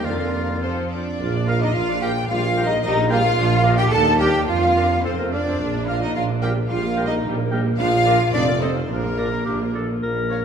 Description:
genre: cinematic, playful, whimsical film cue.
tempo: 108 BPM.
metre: 2/4.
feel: straight.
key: Bb major.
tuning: A4 = 440 Hz.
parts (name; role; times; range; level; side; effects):
rich chamber violin section; melody; 0.0-10.4 s; Bb4 to A5; -34 LUFS; left 4 dB; none.
clear oboe; second line; 0.0-10.4 s; F4 to G5; -36 LUFS; equal; none.
rich chamber violin section; second line; 0.0-10.4 s; F4 to A5; -26 LUFS; equal; none.
rich chamber viola section; accompaniment; 0.0-10.4 s; D3 to D5; -28 LUFS; equal; none.
dark French horn section; sustained chords; 0.0-10.4 s; F3 to G4; -35 LUFS; left 6 dB; none.
rich chamber cello section; bass; 0.0-10.4 s; Bb2 to A4; -24 LUFS; right 1 dB; none.
warm chamber double bass section; bass; 0.0-10.4 s; F1 to F2; -24 LUFS; right 3 dB; none.
warm tuba; bass; 0.0-10.4 s; F1 to Eb2; -27 LUFS; right 1 dB; none.
hollow concert flute; second line; 0.1-10.4 s; Bb4 to A5; -28 LUFS; left 1 dB; none.
warm clarinet; second line; 1.5-10.4 s; G4 to C5; -31 LUFS; left 2 dB; none.
room: wet scoring stage reverb, RT60 1.7 s.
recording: minimal, uncompressed stereo recording.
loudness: -18 LUFS.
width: side -7 dB against mid.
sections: 0.0-1.2 A section; 1.2-10.0 B section.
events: none.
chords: 0.0 Bb/F; 0.6 F; 1.2 Bb; 2.3 Eb/Bb; 3.4 Bb; 3.9 Ebmaj7; 4.5 Bb/F; 5.0 F; 5.6 Bb; 6.7 Eb/Bb; 7.8 Bb; 8.3 F7; 8.9 Bb.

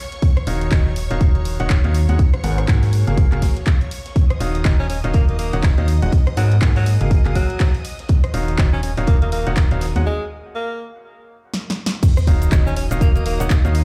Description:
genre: piano house.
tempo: 122 BPM.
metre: 4/4.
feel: swing 59% on 16ths.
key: Eb minor.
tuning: A4 = 439 Hz.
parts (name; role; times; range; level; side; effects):
string machine, violins; sustained chords; 0.0-13.8 s; Db5 to Eb6; -39 LUFS; equal; ensemble chorus, sidechain pumping.
house drum kit; drums; 0.1-13.8 s; crash cymbal, handclaps, hi-hat, rim click, shaker, snare drum; -31 LUFS; equal; none.
street-band drum kit; drums; 0.1-13.8 s; hi-hat, snare drum; -43 LUFS; equal; none.
electronic kick drum; drums; 0.2-13.6 s; none; -18 LUFS; equal; none.
bright upright piano; riff; 0.5-13.8 s; Ab2 to Gb5; -29 LUFS; equal; sidechain pumping, dub echo.
organ-like FM bass; bass; 0.5-13.8 s; Eb1 to Ab2; -22 LUFS; equal; sidechain pumping.
bright tenor saxophone; melody; 4.8-13.4 s; Gb3 to Db4; -30 LUFS; equal; dub echo.
sub drop; sound effects; 12.0-13.8 s; none; -25 LUFS; equal; none.
warbly tape-like pad; texture; 12.8-13.8 s; Eb4 to F5; -36 LUFS; equal; none.
room: little or no reverb.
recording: played on a big sound system in a bare room, large studio reverb.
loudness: -18 LUFS.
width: mono.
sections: 0.0-12.0 A section; 12.0-13.8 B section.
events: break 10.1-12.0; drum fill 11.5-12.0; drop 12.0-13.8; impact 12.0-13.8.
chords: 0.2 Ebm9; 2.2 Abm9; 2.9 Gbmaj9; 4.2 Ebm9; 6.1 Abm9; 6.9 Gbmaj9; 8.1 Ebm9; 10.1 N.C.; 12.0 Ebm9.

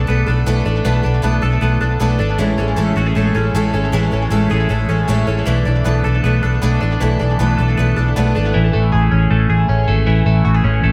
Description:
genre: indie pop.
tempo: 156 BPM.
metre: 4/4.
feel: straight.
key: A major.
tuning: A4 = 440 Hz.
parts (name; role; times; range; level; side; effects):
picked twelve-string acoustic guitar; accompaniment; 0.0-8.6 s; A2 to A4; -22 LUFS; equal; tape echo.
twelve-string electric guitar; arpeggios; 0.0-10.9 s; E3 to A4; -22 LUFS; equal; phaser, tape echo.
vintage muted fingered electric bass; bass; 0.0-10.9 s; G#1 to B1; -18 LUFS; equal; none.
room: light reverb.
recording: echo-heavy mix.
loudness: -16 LUFS.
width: mono.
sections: 0.0-8.5 A section; 8.5-10.9 B section.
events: none.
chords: 0.0 E7sus4; 2.4 Amaj7; 5.5 E7sus4; 8.5 Amaj7.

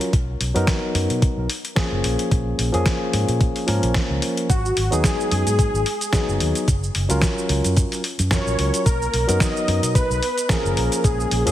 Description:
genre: nu-disco, nu disco.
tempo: 110 BPM.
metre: 4/4.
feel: swing 55% on 16ths.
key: unclear.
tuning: A4 = 441 Hz.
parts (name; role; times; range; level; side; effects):
barky tine electric piano; accompaniment; 0.0-11.5 s; E#3 to A#4; -24 LUFS; left 1 dB; overdrive, sidechain pumping, ping-pong delay.
dusty soul sampler-style drum kit; drums; 0.0-11.5 s; cabasa, hi-hat, snare drum; -25 LUFS; equal; studio ambience.
fingered electric bass with an envelope filter; bass; 0.1-11.5 s; F#1 to B2; -23 LUFS; equal; none.
electronic kick drum; drums; 0.1-11.2 s; none; -20 LUFS; equal; overdrive, studio ambience.
wide unison lead; melody; 4.5-11.5 s; F#4 to D#5; -24 LUFS; equal; ping-pong delay.
room: light reverb.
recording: heavily compressed radio sound, multiband compression.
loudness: -18 LUFS.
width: side -12 dB against mid.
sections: 0.0-11.5 A section.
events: none.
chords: 0.1 Bmaj7; 2.0 A#m7; 4.5 G#m7; 6.7 F#maj7; 8.9 Bmaj7; 10.8 A#m7.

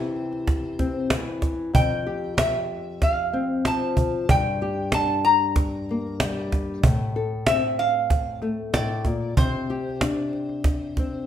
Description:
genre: acoustic folk duo or small band.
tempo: 94 BPM.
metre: 4/4.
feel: straight.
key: F major.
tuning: A4 = 440 Hz.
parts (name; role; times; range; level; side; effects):
lap resonator guitar; melody; 0.0-11.2 s; C5 to Bb5; -24 LUFS; equal; none.
nylon-string guitar; accompaniment; 0.0-11.3 s; F2 to A4; -27 LUFS; left 3 dB; none.
cajon; percussion; 0.2-11.1 s; none; -23 LUFS; right 1 dB; none.
room: wet large studio reverb, RT60 1.0 s.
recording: none.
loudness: -21 LUFS.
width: side -10 dB against mid.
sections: 0.0-11.3 A section.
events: none.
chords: 0.0 C; 1.7 Fsus2; 4.3 Gm; 6.8 F/A; 9.4 Csus2.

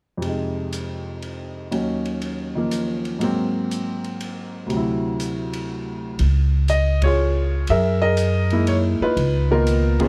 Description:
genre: jazz piano trio.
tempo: 121 BPM.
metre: 3/4.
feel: swing 67% on 8ths.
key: unclear.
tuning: A4 = 440 Hz.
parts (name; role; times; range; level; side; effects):
warm concert grand piano; melody; 0.2-10.1 s; D2 to Fb5; -24 LUFS; equal; none.
open jazz drum kit; drums; 0.2-10.1 s; hi-hat, kick drum, ride cymbal; -37 LUFS; equal; none.
upright bass; bass; 6.2-10.1 s; Db2 to Gb2; -21 LUFS; equal; none.
room: little or no reverb.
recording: dark, warm production.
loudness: -22 LUFS.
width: mono.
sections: 0.2-6.2 A section; 6.2-10.1 B section.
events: band accent 6.9, 9.9.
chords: 0.2 Fm7; 1.7 Ebm7; 3.2 Ab9; 4.7 D9; 6.2 Db; 7.7 Gb13; 9.2 Db13.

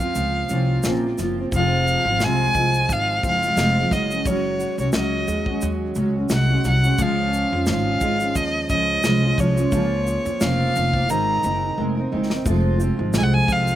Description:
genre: acoustic pop.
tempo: 88 BPM.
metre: 4/4.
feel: swing 55% on 16ths.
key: unclear.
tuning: A4 = 442 Hz.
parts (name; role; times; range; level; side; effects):
warm violin; melody; 0.0-13.8 s; Db5 to Bb5; -22 LUFS; equal; none.
fingerpicked steel-string acoustic guitar; accompaniment; 0.0-13.8 s; F2 to Bb4; -24 LUFS; equal; double-tracked left and right, slapback echo.
flamenco guitar; arpeggios; 0.0-13.8 s; Eb3 to Db4; -31 LUFS; right 7 dB; slapback echo.
upright bass; bass; 0.0-13.8 s; F1 to F2; -23 LUFS; equal; none.
natural country drum kit; drums; 0.0-13.8 s; kick drum, shaker, snare drum; -26 LUFS; equal; none.
room: little or no reverb.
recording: recorded outdoors, with no room sound.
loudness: -18 LUFS.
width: side -12 dB against mid.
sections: 0.0-12.5 A section; 12.5-13.8 B section.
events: drum fill 11.8-12.5.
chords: 0.0 Bbmadd9; 1.5 Fm; 3.9 Gbsus2; 7.0 Db; 9.7 Bbmadd9/Db; 11.1 Abadd9; 12.5 Fm.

